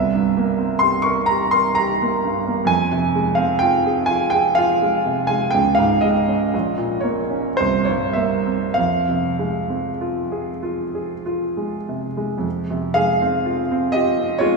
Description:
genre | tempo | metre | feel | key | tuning
classical, romantic nocturne for solo piano | 48-67 BPM | 3/4 | rubato | F minor | A4 = 440 Hz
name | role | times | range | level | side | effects
clear concert grand piano | solo | 0.0-14.6 s | Bb1 to Db6 | -17 LUFS | right 1 dB | none
room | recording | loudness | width
wet church reverb, RT60 3.5 s | recorded in a church or concert hall, small room ambience | -17 LUFS | side -3 dB against mid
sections
0.0-12.4 A section; 12.4-14.6 B section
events
none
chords
0.0 C7; 2.7 Fm; 5.6 Db5; 6.5 Bbmadd11; 7.6 C7; 8.8 Fm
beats
0.83 1.78 | 2.70 3.64 4.59 | 5.56 6.54 7.60 | 8.77 10.01 11.25 | 12.45 13.46 14.43

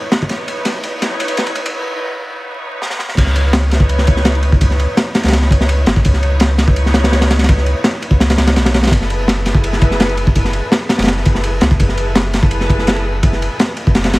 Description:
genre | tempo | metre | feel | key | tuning
drum and bass, jungle | 167 BPM | 4/4 | straight | C# minor | A4 = 440 Hz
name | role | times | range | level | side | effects
muted studio string section | sustained chords | 0.0-14.2 s | D#4 to C#5 | -22 LUFS | equal | none
crunchy breakbeat drum kit | drums | 0.1-14.2 s | crash cymbal, kick drum, ride cymbal, snare drum | -14 LUFS | equal | none
saturated sub bass | bass | 3.2-14.2 s | F#1 to C#2 | -16 LUFS | equal | tube saturation
room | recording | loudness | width
light reverb, studio reverb | vinyl crackle, high-pass filter | -12 LUFS | side -20 dB against mid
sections
0.0-3.2 A section; 3.2-14.2 B section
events
build-up 0.0-3.2; filter sweep 0.0-3.2; drum fill 0.3-1.7, 2.8-3.2; break 1.7-3.2; drop 3.2-14.2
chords
0.0 C#m9; 8.9 F#m11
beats
| 0.30 0.66 1.02 1.38 | 1.74 2.10 2.46 2.81 | 3.17 3.53 3.89 4.25 | 4.61 4.97 5.33 5.69 | 6.05 6.41 6.77 7.13 | 7.49 7.84 8.20 8.56 | 8.92 9.28 9.64 10.00 | 10.36 10.72 11.08 11.44 | 11.80 12.16 12.52 12.88 | 13.23 13.59 13.95

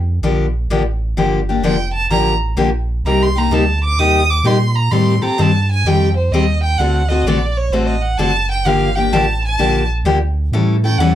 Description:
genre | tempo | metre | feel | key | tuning
acoustic string swing (jazz manouche) | 128 BPM | 4/4 | swing 66% on 8ths | G minor | A4 = 438 Hz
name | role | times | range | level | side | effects
sub bass with octave | bass | 0.0-11.2 s | F1 to Bb2 | -17 LUFS | right 1 dB | none
picked steel-string acoustic guitar | accompaniment | 0.2-11.1 s | C3 to A4 | -16 LUFS | left 3 dB | none
warm violin | melody | 1.6-11.2 s | C5 to Eb6 | -19 LUFS | right 3 dB | none
room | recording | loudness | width
little or no reverb | dry, close 1970s-style studio recording | -13 LUFS | side -11 dB against mid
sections
0.0-1.2 A section; 1.2-11.2 A section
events
violin solo 0.0-11.2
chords
0.0 Gm7; 1.2 Gm9; 3.0 Cm7; 4.9 Am7b5; 6.8 D7; 8.7 Gm7; 10.5 A7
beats
0.22 0.69 | 1.16 1.63 2.10 2.57 | 3.04 3.51 3.98 4.44 | 4.91 5.38 5.85 6.32 | 6.78 7.25 7.72 8.19 | 8.65 9.12 9.59 10.06 | 10.53 10.99

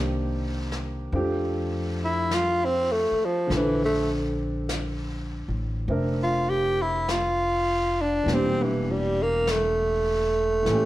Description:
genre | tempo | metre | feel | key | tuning
jazz ballad | 50 BPM | 4/4 | swing 67% on 8ths | unclear | A4 = 439 Hz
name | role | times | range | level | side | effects
warm concert grand piano | accompaniment | 0.0-10.9 s | Bb2 to E5 | -30 LUFS | equal | none
upright bass | bass | 0.0-10.9 s | E1 to F2 | -29 LUFS | equal | none
jazz brush drum kit | drums | 0.7-10.9 s | brushed snare drum, hi-hat, snare drum | -36 LUFS | left 2 dB | none
growling tenor saxophone | melody | 2.0-10.9 s | E3 to G4 | -23 LUFS | equal | plate reverb
room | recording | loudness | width
moderate large studio reverb, RT60 1.1 s | none | -23 LUFS | side -15 dB against mid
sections
0.0-10.9 A section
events
tenor saxophone solo 0.0-10.9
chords
0.0 Cm9; 1.1 F69; 3.5 Bbmaj9; 8.3 Em7b5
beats
1.12 2.31 | 3.50 4.69 5.88 7.08 | 8.28 9.47 10.68

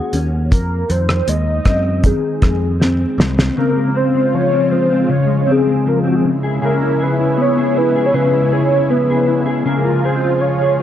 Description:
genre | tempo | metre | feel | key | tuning
indie pop, bedroom pop | 79 BPM | 4/4 | straight | Db major | A4 = 440 Hz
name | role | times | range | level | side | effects
soft octave-layered synth lead | melody | 0.0-10.8 s | Gb4 to Eb5 | -18 LUFS | right 1 dB | phaser, analog chorus
mellow electric guitar | accompaniment | 0.0-10.8 s | Db3 to G#4 | -16 LUFS | left 2 dB | ensemble chorus, warbly pitch drift
picked electric bass | bass | 0.1-3.5 s | C2 to Gb2 | -18 LUFS | equal | none
cloth-damped thuddy drum kit | drums | 0.1-3.6 s | hi-hat, kick drum, rim click, snare drum | -15 LUFS | equal | none
lush unison pad | sustained chords | 3.6-10.8 s | F3 to F4 | -24 LUFS | right 2 dB | chorus
room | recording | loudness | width
light reverb, small room reverb | lossy compression artefacts | -13 LUFS | side -10 dB against mid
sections
0.0-3.6 A section; 3.6-10.8 B section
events
drum fill 2.8-3.6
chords
0.0 Ebm7; 0.5 Fm7; 3.6 Dbmaj7; 6.2 E6/C#; 9.7 Dbmaj7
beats
| 0.52 1.28 2.05 2.81 | 3.57 4.33 5.09 5.85 | 6.61 7.37 8.13 8.89 | 9.65 10.42

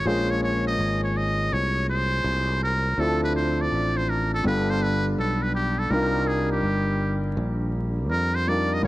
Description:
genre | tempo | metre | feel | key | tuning
hip hop, jazz-hop | 82 BPM | 4/4 | swing 65% on 16ths | unclear | A4 = 439 Hz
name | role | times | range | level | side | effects
trumpet with metal mute | melody | 0.0-8.9 s | G4 to Eb5 | -27 LUFS | equal | tape echo
dark grand piano | accompaniment | 0.0-8.9 s | F3 to Bb4 | -26 LUFS | equal | none
sustaining fretless electric bass | bass | 0.0-8.9 s | G1 to F2 | -26 LUFS | equal | none
room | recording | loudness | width
light reverb, small room ambience | vinyl crackle | -22 LUFS | side -17 dB against mid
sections
0.0-8.9 A section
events
muted trumpet solo 0.0-8.9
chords
0.1 Bbm9; 3.0 Dm7; 4.5 G7; 5.9 Cm11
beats
| 0.06 0.79 1.52 2.26 | 2.99 3.72 4.45 5.18 | 5.92 6.65 7.38 8.11 | 8.84

